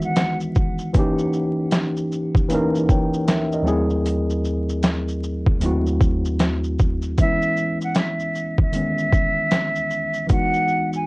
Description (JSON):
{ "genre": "lo-fi hip hop", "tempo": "77 BPM", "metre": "4/4", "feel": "swing 63% on 16ths", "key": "unclear", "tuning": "A4 = 437 Hz", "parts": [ { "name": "breathy silver concert flute", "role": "melody", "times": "0.0-0.4, 7.2-11.1 s", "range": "E5 to G#5", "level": "-23 LUFS", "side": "right 1 dB", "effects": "low-pass filter, plate reverb" }, { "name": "tine electric piano", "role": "accompaniment", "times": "0.0-11.1 s", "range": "D#2 to G5", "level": "-22 LUFS", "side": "equal", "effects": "medium stereo tremolo, low-pass filter" }, { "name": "boom bap sampler-style drum kit", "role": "drums", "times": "0.0-11.1 s", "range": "hi-hat, kick drum, shaker, snare drum", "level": "-20 LUFS", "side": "equal", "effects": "overdrive" } ], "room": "light reverb", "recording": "worn, warbling old tape, cassette tape, vinyl crackle, warbly pitch drift, nothing above 10.8 kHz", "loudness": "-18 LUFS", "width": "side -25 dB against mid", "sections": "0.0-7.2 A section; 7.2-11.1 B section", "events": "none", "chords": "0.0 Emaj9; 0.9 D#7b9; 3.7 G#7b9b13/D#; 7.2 C#m9; 10.3 Emaj9", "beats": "0.17 | 0.94 1.72 2.50 3.28 | 4.06 4.84 5.62 6.40 | 7.18 7.96 8.74 9.52 | 10.29" }